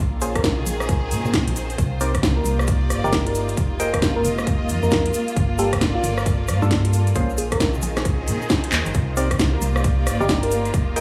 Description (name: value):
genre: UK garage, two-step garage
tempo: 134 BPM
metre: 4/4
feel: swing 62% on 16ths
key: C minor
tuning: A4 = 443 Hz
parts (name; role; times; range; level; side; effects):
- airy breathy pad; sustained chords; 0.0-11.0 s; Ab3 to D5; -37 LUFS; equal; none
- organ-like FM bass; bass; 0.0-11.0 s; F1 to Bb2; -26 LUFS; equal; none
- clear studio string section; texture; 0.0-11.0 s; Eb3 to Eb5; -31 LUFS; equal; sidechain pumping
- soft struck synth lead; melody; 0.2-11.0 s; D4 to C5; -30 LUFS; equal; chorus, dub echo
- percussive organ stab; stabs; 0.2-11.0 s; G3 to G5; -30 LUFS; equal; chorus, phaser, dub echo
- house drum kit; drums; 0.2-11.0 s; handclaps, hi-hat, rim click, snare drum; -27 LUFS; equal; overdrive
- egg shaker; percussion; 0.2-11.0 s; none; -39 LUFS; equal; none
- electronic kick drum; drums; 0.4-10.8 s; none; -25 LUFS; equal; none
room: light reverb, digital ambience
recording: studio ambience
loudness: -21 LUFS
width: mono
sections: 0.0-11.0 A section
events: drum fill 8.7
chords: 0.0 Bbm7; 1.8 Cm7; 3.6 Fm7; 5.1 Gm7; 7.2 Bbm7; 8.9 Cm7